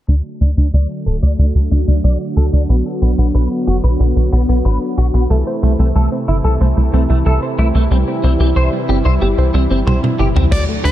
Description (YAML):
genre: synthwave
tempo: 92 BPM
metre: 4/4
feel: straight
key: unclear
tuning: A4 = 439 Hz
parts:
  - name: soft supersaw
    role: sustained chords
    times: 0.1-10.9 s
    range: C3 to F#4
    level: -20 LUFS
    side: equal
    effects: phaser, sidechain pumping, low-pass filter
  - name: clean electric guitar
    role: riff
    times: 0.1-10.4 s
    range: A3 to D5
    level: -25 LUFS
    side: left 2 dB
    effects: ensemble chorus, low-pass filter, tape echo
  - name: tight sequencer bass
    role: bass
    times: 0.1-10.9 s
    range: D1 to D2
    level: -13 LUFS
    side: equal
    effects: none
  - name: soft round pluck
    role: arpeggios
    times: 5.3-10.9 s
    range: F#3 to C5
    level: -22 LUFS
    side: right 3 dB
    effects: chorus, tape echo
  - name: huge arena drum kit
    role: drums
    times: 9.9-10.9 s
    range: crash cymbal, hi-hat, toms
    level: -18 LUFS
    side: left 1 dB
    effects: low-pass filter on toms, low-pass filter on cymbals, low-pass filter on hats, low-pass filter on snare, low-pass filter on room
  - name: dark smooth lead guitar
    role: melody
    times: 10.5-10.9 s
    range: C5 to D5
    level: -20 LUFS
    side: left 2 dB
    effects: overdrive
  - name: kick drum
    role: drums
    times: 10.5-10.7 s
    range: none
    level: -19 LUFS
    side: equal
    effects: none
room: light reverb, small room ambience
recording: dark, warm production, low-pass filter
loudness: -12 LUFS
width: side -13 dB against mid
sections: 0.1-10.5 A section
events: filter sweep on analog synth bass 0.1-10.5; filter sweep on supersaw synth 0.1-10.5; filter sweep on clean electric guitar 0.1-10.5; filter sweep 0.1-10.5; drum fill 9.9-10.5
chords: 0.1 D; 2.7 Bm; 5.3 Am; 7.9 C